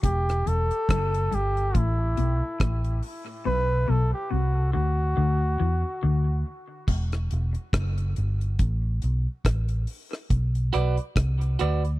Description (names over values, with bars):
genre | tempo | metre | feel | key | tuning
dub reggae | 70 BPM | 4/4 | swing 58% on 16ths | E minor | A4 = 444 Hz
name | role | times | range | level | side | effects
warm flugelhorn | melody | 0.0-6.4 s | E4 to B4 | -29 LUFS | equal | dub echo
semi-hollow electric guitar | riff | 0.0-7.1 s | E2 to E3 | -32 LUFS | left 6 dB | none
vintage muted fingered electric bass | bass | 0.0-12.0 s | E1 to E2 | -24 LUFS | equal | none
deep reggae drum kit | drums | 0.0-12.0 s | hi-hat, kick drum, rim click, splash cymbal | -26 LUFS | equal | none
clean electric guitar | accompaniment | 10.7-11.8 s | F#4 to D5 | -28 LUFS | right 6 dB | high-pass filter
room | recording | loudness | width
studio ambience | dry, close 1970s-style studio recording | -23 LUFS | side -17 dB against mid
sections
0.0-12.0 A section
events
break 0.0-10.3; part muted 3.5-6.9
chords
0.0 Em; 1.7 A5; 3.5 Bm; 5.2 D; 6.9 Em; 8.6 Asus2; 10.3 Bm